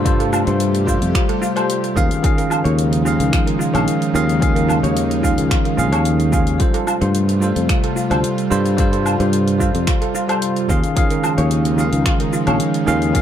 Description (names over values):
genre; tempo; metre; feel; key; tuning
sunset chillout; 110 BPM; 4/4; straight; unclear; A4 = 440 Hz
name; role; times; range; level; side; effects
bell-like tine electric piano; accompaniment; 0.0-13.2 s; Eb3 to F5; -20 LUFS; equal; auto-pan, ping-pong delay
airy breathy pad; sustained chords; 0.0-13.2 s; C3 to G4; -23 LUFS; equal; chorus
sustaining fretless electric bass; bass; 0.0-13.2 s; Bb1 to G2; -19 LUFS; equal; none
downlifter; sound effects; 0.0-2.2 s; none; barely audible; none; none
steel pan; arpeggios; 0.1-13.2 s; F4 to Db5; -25 LUFS; equal; ping-pong delay
deep house drum kit; drums; 0.1-13.2 s; finger snaps, hi-hat, shaker, woodblock; -25 LUFS; right 1 dB; none
electronic kick drum; drums; 0.1-13.2 s; none; -19 LUFS; equal; none
room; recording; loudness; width
light reverb; dark, warm production; -15 LUFS; side -10 dB against mid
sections
0.0-13.2 A section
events
none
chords
0.0 G9sus4; 2.0 Eb9sus4; 6.6 G9sus4; 10.7 Eb9sus4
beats
| 0.06 0.60 1.15 1.69 | 2.24 2.78 3.33 3.88 | 4.42 4.97 5.51 6.06 | 6.60 7.15 7.69 8.24 | 8.78 9.33 9.88 10.42 | 10.97 11.51 12.06 12.60 | 13.15